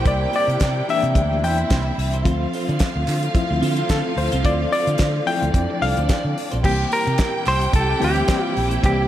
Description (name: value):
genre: disco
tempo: 109 BPM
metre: 4/4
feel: swing 56% on 16ths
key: unclear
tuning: A4 = 441 Hz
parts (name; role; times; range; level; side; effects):
- dark studio violin section; second line; 0.0-9.1 s; D4 to G5; -27 LUFS; right 1 dB; tape echo
- barky reed electric piano; accompaniment; 0.0-9.1 s; E3 to G5; -24 LUFS; left 4 dB; overdrive, fast tremolo
- clean electric guitar; accompaniment; 0.0-9.1 s; Bb3 to D5; -31 LUFS; right 7 dB; phaser
- clear symphonic string section; sustained chords; 0.0-9.1 s; Bb2 to E4; -31 LUFS; equal; none
- fingered electric bass; bass; 0.1-9.1 s; Bb1 to D3; -22 LUFS; right 1 dB; none
- damped 70s drum kit; drums; 0.1-9.0 s; crash cymbal, hi-hat, kick drum, snare drum; -23 LUFS; equal; none
- group handclap; percussion; 0.6-8.4 s; none; -35 LUFS; right 6 dB; none
- semi-hollow electric guitar; melody; 6.7-9.1 s; G4 to C5; -22 LUFS; right 1 dB; none
room: light reverb, small room reverb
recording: none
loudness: -18 LUFS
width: side -12 dB against mid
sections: 0.0-6.6 A section; 6.6-9.1 B section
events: reed electric piano solo 0.0-6.6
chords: 0.0 C7; 2.3 Dm7; 6.6 C7